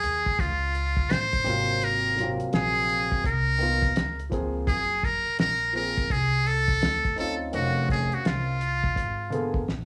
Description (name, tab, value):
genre	hip hop, jazz-hop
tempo	84 BPM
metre	4/4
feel	swing 64% on 16ths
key	unclear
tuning	A4 = 440 Hz
part	trumpet with metal mute	melody	0.0-9.7 s	F4 to C5	-28 LUFS	equal	cassette tape
part	upright bass	bass	0.0-9.8 s	F1 to Eb2	-32 LUFS	equal	transformer saturation
part	cloth-damped thuddy drum kit	drums	0.0-9.8 s	hi-hat, kick drum, snare drum	-30 LUFS	equal	none
part	dark grand piano	accompaniment	1.4-9.6 s	Bb2 to F5	-34 LUFS	equal	cassette tape
room	light reverb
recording	home recording on cassette, studio reverb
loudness	-25 LUFS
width	mono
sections	0.0-9.8 A section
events	drum fill 9.7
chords	0.0 Eb7sus2; 1.5 Ab13; 4.0 Db6; 4.7 Gbmaj9#11; 6.8 D5; 7.5 Dbmaj9/F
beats	0.39 1.10 | 1.82 2.53 3.25 3.96 | 4.68 5.39 6.11 6.82 | 7.53 8.25 8.96 9.68